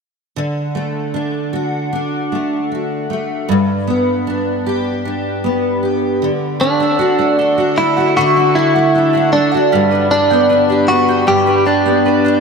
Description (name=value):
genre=pop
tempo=77 BPM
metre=4/4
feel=straight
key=unclear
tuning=A4 = 440 Hz
part: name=picked steel-string acoustic guitar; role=accompaniment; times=0.4-12.4 s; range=G2 to G4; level=-16 LUFS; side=equal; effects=double-tracked left and right
part: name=direct-recorded clean electric guitar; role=melody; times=6.6-12.4 s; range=D4 to G4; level=-13 LUFS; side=equal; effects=lush chorus, diffuse ambient delay
part: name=mandolin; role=arpeggios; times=6.6-12.4 s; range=G3 to G5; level=-20 LUFS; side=right 4 dB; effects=none
room=wet huge ambient reverb, RT60 4.4 s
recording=dreamy mix soaked in reverb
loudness=-13 LUFS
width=side -5 dB against mid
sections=0.4-6.6 A section; 6.6-12.4 B section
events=none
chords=0.4 D; 3.5 G; 6.2 N.C.; 6.6 D; 9.7 G